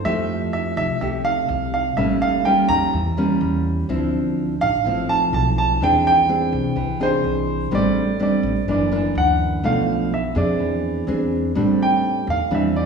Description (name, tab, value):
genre	bossa nova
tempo	125 BPM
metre	4/4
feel	straight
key	A minor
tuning	A4 = 440 Hz
part	warm grand piano	melody	0.0-12.9 s	B#4 to Bb5	-21 LUFS	right 2 dB	none
part	nylon-string guitar	accompaniment	0.0-12.9 s	F#2 to G#4	-21 LUFS	right 1 dB	none
part	upright bass	bass	0.0-12.9 s	F#1 to F2	-26 LUFS	equal	none
room	wet recital hall reverb, RT60 1.5 s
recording	recorded in a church or concert hall, studio reverb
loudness	-18 LUFS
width	side -5 dB against mid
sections	0.0-11.6 A section; 11.6-12.9 B section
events	grand piano solo 11.6-12.9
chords	0.1 Fmaj9; 2.0 A7b9; 3.9 Dm9; 5.8 E7alt; 7.7 Am7; 8.7 F#aug7; 9.6 Bm7b5; 10.6 Eaug7; 11.6 Am7